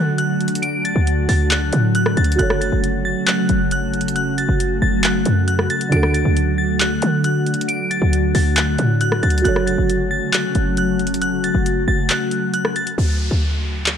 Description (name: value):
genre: hip hop, trap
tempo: 136 BPM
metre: 4/4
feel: half-time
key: F# minor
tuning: A4 = 440 Hz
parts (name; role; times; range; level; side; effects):
- glassy synth bell; melody; 0.0-13.0 s; F#6 to D7; -23 LUFS; left 1 dB; chorus, low-pass filter, tape echo
- felt-muted upright piano; accompaniment; 0.0-13.0 s; D3 to C#5; -25 LUFS; right 4 dB; low-pass filter
- glassy FM pad; sustained chords; 0.0-13.0 s; C#3 to F#4; -21 LUFS; equal; ensemble chorus, built-in reverb
- short 808-style bass; bass; 0.0-14.0 s; F#1 to D3; -19 LUFS; equal; none
- trap drum kit; drums; 0.2-14.0 s; handclaps, hi-hat, rim click; -22 LUFS; equal; overdrive, vintage 12-bit sampler grit
- downlifter; sound effects; 13.0-14.0 s; none; -28 LUFS; equal; none
room: light reverb, digital ambience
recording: dark, warm production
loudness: -16 LUFS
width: side -8 dB against mid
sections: 0.0-13.0 A section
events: kick muted 12.1-13.0; hi-hats muted 13.0-14.0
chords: 0.0 D; 2.4 F#m; 5.9 D; 9.4 F#m; 13.0 D5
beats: 0.18 | 0.63 1.07 1.51 1.95 | 2.39 2.83 3.27 3.71 | 4.16 4.60 5.04 5.48 | 5.92 6.36 6.80 7.24 | 7.68 8.13 8.57 9.01 | 9.45 9.89 10.33 10.77 | 11.21 11.66 12.10 12.54 | 12.98 13.42 13.86